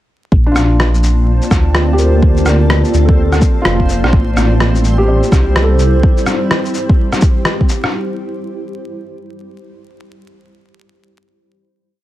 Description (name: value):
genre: future garage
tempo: 126 BPM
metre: 4/4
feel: swing 62% on 16ths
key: A phrygian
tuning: A4 = 440 Hz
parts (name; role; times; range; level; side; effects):
- granular cloud pad; sustained chords; 1.0-7.9 s; G3 to A5; -20 LUFS; equal; built-in reverb, sidechain pumping
- dark detuned saw bass; bass; 0.3-6.0 s; F1 to D2; -12 LUFS; equal; sidechain pumping
- electronic kick drum; drums; 0.3-7.7 s; none; -12 LUFS; equal; overdrive
- backwards swelling texture; texture; 1.2-6.0 s; C4 to C5; -26 LUFS; equal; built-in reverb
- felt-muted upright piano; accompaniment; 0.5-7.3 s; D4 to D5; -19 LUFS; equal; vintage 12-bit sampler grit, sidechain pumping, analog delay
- electronic rim click and shaker; drums; 0.6-7.9 s; none; -18 LUFS; left 1 dB; soft clipping on snare
room: light reverb, digital ambience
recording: dense, heavily limited modern master, vinyl crackle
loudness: -10 LUFS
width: side -14 dB against mid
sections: 0.3-7.9 groove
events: none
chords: 0.3 Bbmaj7; 4.1 Am7